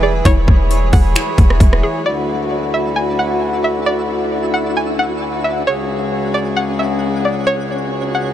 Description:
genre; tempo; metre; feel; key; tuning
hip hop, atmospheric cloud-rap; 133 BPM; 4/4; half-time; unclear; A4 = 436 Hz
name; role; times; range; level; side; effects
string-like resonator pluck; melody; 0.0-8.3 s; C#5 to G#5; -21 LUFS; equal; chorus, low-pass filter, tape echo
hand-pumped harmonium; sustained chords; 0.0-8.3 s; C#2 to C#5; -19 LUFS; left 1 dB; sidechain pumping
hollow square pluck; arpeggios; 0.0-2.1 s; E4 to G#4; -27 LUFS; right 2 dB; none
clean 808-style bass; bass; 0.0-1.8 s; E1; -14 LUFS; equal; none
twinkling granular texture; texture; 0.0-8.3 s; G#3 to F#5; -27 LUFS; equal; built-in reverb
trap drum kit; drums; 0.3-1.8 s; finger snaps, hi-hat, kick drum, rim click; -13 LUFS; equal; overdrive
room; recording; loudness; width
light reverb, digital ambience; none; -14 LUFS; side -11 dB against mid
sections
0.0-2.1 A section; 2.1-8.3 B section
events
none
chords
0.0 E; 2.1 Dadd9; 5.7 C#sus4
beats
| 0.25 0.70 1.16 1.61 | 2.06 2.51 2.96 3.41 | 3.86 4.31 4.76 5.21 | 5.67 6.12 6.57 7.02 | 7.47 7.92

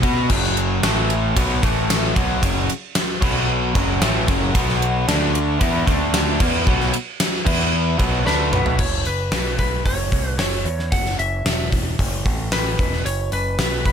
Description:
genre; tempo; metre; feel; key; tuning
hard rock; 113 BPM; 4/4; straight; F# minor; A4 = 440 Hz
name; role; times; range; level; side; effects
cranked stack guitar; riff; 0.0-8.8 s; F#2 to B4; -21 LUFS; left 1 dB; overdrive
growling picked electric bass; bass; 0.0-13.9 s; E1 to B2; -23 LUFS; equal; overdrive
gated 80s drum kit; drums; 0.0-13.9 s; crash cymbal, hi-hat, kick drum, ride cymbal, snare drum, toms; -21 LUFS; equal; none
lightly driven lead guitar; melody; 8.3-13.9 s; B4 to F#5; -25 LUFS; equal; analog delay
room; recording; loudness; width
light reverb; none; -17 LUFS; side -8 dB against mid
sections
0.0-8.8 A section; 8.8-13.9 B section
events
drum fill 8.3-8.8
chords
0.3 F#5; 0.8 A5; 1.4 B5; 1.6 A5; 2.2 F#5; 3.2 B5; 3.8 F#m; 4.6 B5; 5.1 D5; 5.6 E5; 5.9 D5; 6.4 B5; 7.5 E5; 8.0 B5; 8.8 F#5; 9.3 N.C.; 9.9 F#5; 11.5 N.C.; 12.3 Asus2; 12.8 Esus2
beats
| 0.30 0.84 1.37 1.90 | 2.43 2.96 3.49 4.02 | 4.55 5.08 5.61 6.14 | 6.67 7.20 7.73 8.26 | 8.79 9.33 9.86 10.39 | 10.92 11.46 11.99 12.52 | 13.05 13.59

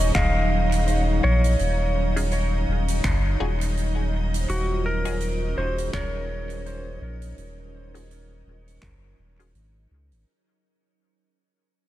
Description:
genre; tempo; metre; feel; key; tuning
ambient dub; 83 BPM; 4/4; swing 57% on 16ths; Eb dorian; A4 = 445 Hz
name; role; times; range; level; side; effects
clean lap steel guitar; melody; 0.0-9.5 s; Gb4 to F5; -28 LUFS; equal; tape echo
soft additive organ-like pad; sustained chords; 0.0-10.3 s; Gb3 to Eb5; -31 LUFS; equal; ensemble chorus, built-in reverb
vibraphone with medium hard mallets; arpeggios; 0.0-10.3 s; Db4 to C5; -41 LUFS; right 1 dB; tape echo
soft dub sub bass; bass; 0.0-10.3 s; Eb1 to Db2; -24 LUFS; equal; tube saturation
electronic kick drum; drums; 0.1-9.0 s; none; -27 LUFS; equal; small room ambience
soft-mallet drum kit; drums; 0.1-10.2 s; finger snaps, hi-hat; -34 LUFS; right 1 dB; small room ambience, dub echo
filtered dub chord stab; stabs; 2.2-9.5 s; Db4 to Ab4; -38 LUFS; left 4 dB; none
room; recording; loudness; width
light reverb, small room ambience; none; -21 LUFS; side -14 dB against mid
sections
0.0-10.3 A section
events
fade-out 0.0-10.3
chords
0.0 Ebm11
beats
0.15 0.87 | 1.59 2.32 3.04 3.76 | 4.49 5.21 5.93 6.66 | 7.38 8.10 8.82 9.55

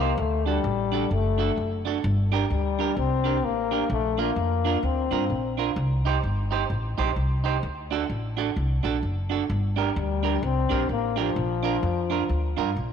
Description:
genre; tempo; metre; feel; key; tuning
ska; 129 BPM; 4/4; swing 61% on 8ths; Bb major; A4 = 441 Hz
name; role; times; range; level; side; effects
breathy trombone; melody; 0.0-5.6, 10.0-12.8 s; F3 to C4; -27 LUFS; left 9 dB; none
clean electric guitar; accompaniment; 0.0-12.7 s; D4 to C5; -28 LUFS; right 9 dB; vibrato effect
upright bass; bass; 0.0-12.9 s; F#1 to G2; -26 LUFS; equal; none
room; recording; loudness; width
moderate plate reverb, RT60 2.9 s; 1960s-style stereo with parts hard left and right; -23 LUFS; side -7 dB against mid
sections
0.0-12.9 A section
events
none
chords
0.2 D; 2.0 Gm; 3.9 Bb; 5.8 Cm; 7.6 D; 9.5 Gm; 11.4 Bb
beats
| 0.17 0.64 1.11 1.57 | 2.04 2.50 2.97 3.44 | 3.90 4.37 4.83 5.30 | 5.76 6.23 6.70 7.16 | 7.63 8.09 8.56 9.03 | 9.49 9.96 10.43 10.89 | 11.36 11.83 12.29 12.76

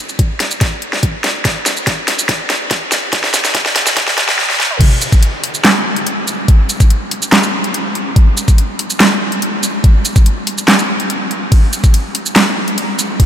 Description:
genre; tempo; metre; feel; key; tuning
dubstep; 143 BPM; 4/4; half-time; none; none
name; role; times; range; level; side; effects
dubstep drum kit; drums; 0.1-13.3 s; crash cymbal, handclaps, hi-hat, ride cymbal, shaker, snare drum, toms; -13 LUFS; equal; overdrive, high-pass filter on snare, high-pass filter on hats, high-pass filter on perc, high-pass filter on toms, high-pass filter on cymbals
electronic kick drum; drums; 0.2-13.3 s; none; -10 LUFS; equal; overdrive
room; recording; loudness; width
moderate huge ambient reverb, RT60 8.5 s; dreamy mix soaked in reverb, high-pass filter; -11 LUFS; side -10 dB against mid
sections
0.0-4.8 A section; 4.8-13.3 B section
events
build-up 0.0-4.8; drum fill 0.0-4.4, 4.4-4.8; filter sweep 0.0-4.8; drop 4.8-13.3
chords
none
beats
0.19 0.61 1.03 | 1.45 1.87 2.29 2.71 | 3.13 3.55 3.97 4.39 | 4.81 5.22 5.64 6.06 | 6.48 6.90 7.32 7.74 | 8.16 8.58 9.00 9.42 | 9.84 10.26 10.68 11.10 | 11.52 11.94 12.36 12.78 | 13.20

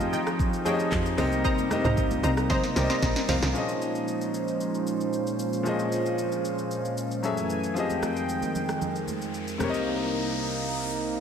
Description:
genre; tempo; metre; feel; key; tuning
amapiano; 114 BPM; 4/4; straight; Bb dorian; A4 = 440 Hz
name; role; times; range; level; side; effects
clear baby grand piano; accompaniment; 0.0-11.2 s; Bb2 to Bb5; -30 LUFS; left 4 dB; none
warm analog pad; sustained chords; 0.0-11.2 s; C2 to Ab5; -29 LUFS; right 2 dB; chorus, sidechain pumping
tight log drum bass; bass; 0.0-3.5 s; Bb1 to F3; -28 LUFS; right 1 dB; none
afro-pop drum kit; drums; 0.0-9.9 s; handclaps, hi-hat, kick drum, rim click, shaker, snare drum, toms; -32 LUFS; equal; none
congas; percussion; 0.0-3.4, 7.9-9.7 s; none; -37 LUFS; right 4 dB; none
punchy chord stab; stabs; 0.1-3.4 s; Ab4 to Bb5; -32 LUFS; right 2 dB; chorus, tape echo
riser; sound effects; 8.8-10.9 s; none; -36 LUFS; left 3 dB; none
room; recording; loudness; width
wet lush hall reverb, RT60 2.3 s; dreamy mix soaked in reverb; -24 LUFS; side -7 dB against mid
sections
0.0-3.6 A section; 3.6-11.2 B section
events
drop 0.0-3.6; drum fill 2.5-3.6; grand piano fill 2.8-3.6; riser 8.8-11.2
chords
0.0 Fm9; 1.2 Cm7; 3.6 Bbm11; 7.2 Gbm9; 7.8 Fm9; 9.6 Cm7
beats
0.39 0.92 | 1.45 1.97 2.50 3.02 | 3.55 4.08 4.60 5.13 | 5.66 6.18 6.71 7.24 | 7.76 8.29 8.81 9.34 | 9.87 10.39 10.92

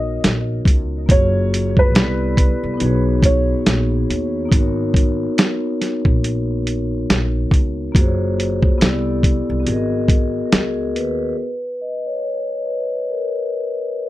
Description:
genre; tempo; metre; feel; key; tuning
lo-fi hip hop; 70 BPM; 4/4; swing 58% on 16ths; G# dorian; A4 = 440 Hz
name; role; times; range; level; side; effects
felt-muted upright piano; melody; 0.0-4.5 s; B4 to D#5; -23 LUFS; right 1 dB; low-pass filter, analog delay
vibraphone with medium mallets; accompaniment; 0.0-14.1 s; A#3 to D#5; -21 LUFS; left 2 dB; cassette tape, low-pass filter
upright bass; bass; 0.0-11.3 s; F#1 to D#2; -22 LUFS; equal; none
dusty soul sampler-style drum kit; drums; 0.2-11.2 s; hi-hat, kick drum, snare drum; -15 LUFS; equal; none
room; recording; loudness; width
light reverb; none; -16 LUFS; side -16 dB against mid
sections
0.0-11.4 A section; 11.4-14.1 B section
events
vibraphone solo 11.4-14.1; filter sweep on vibraphone 11.4-14.1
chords
0.0 G#m11 (rootless); 1.1 F#maj7; 1.9 Cmaj13; 2.8 Bmaj13; 4.5 G#m11; 7.9 F#maj7; 8.8 Cmaj13; 9.7 G#m9; 11.4 N.C.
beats
0.23 | 1.09 1.95 2.80 3.66 | 4.52 5.37 6.23 7.09 | 7.95 8.80 9.66 10.52 | 11.37 12.23 13.09 13.95

